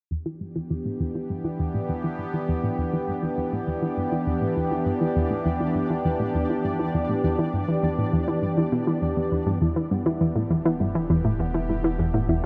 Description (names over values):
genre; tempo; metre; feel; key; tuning
ambient, sequencer-driven space music; 101 BPM; 4/4; straight; E minor; A4 = 440 Hz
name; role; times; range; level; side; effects
sweeping resonant pad; sustained chords; 0.4-12.5 s; E3 to G4; -30 LUFS; equal; chorus
analog pluck; riff; 0.1-12.4 s; E2 to E3; -27 LUFS; equal; chorus, tape echo
pulsing gated texture; texture; 3.2-12.5 s; A3 to D5; -40 LUFS; equal; chorus, built-in reverb
concert harp; arpeggios; 9.6-12.5 s; B3 to E5; -34 LUFS; equal; low-pass filter, tape echo
round analog bass; bass; 9.6-12.5 s; E1; -35 LUFS; equal; none
room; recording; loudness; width
wet huge ambient reverb, RT60 8.1 s; none; -25 LUFS; mono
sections
0.1-9.6 A section; 9.6-12.5 B section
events
fade-in on synth texture 0.1-9.6; filter sweep on synth arpeggio sound 0.1-9.6; filter sweep on harp 9.6-12.5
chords
0.1 Em7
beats
| 0.11 0.70 1.30 1.89 | 2.49 3.08 3.67 4.27 | 4.86 5.46 6.05 6.64 | 7.24 7.83 8.43 9.02 | 9.62 10.21 10.80 11.40 | 11.99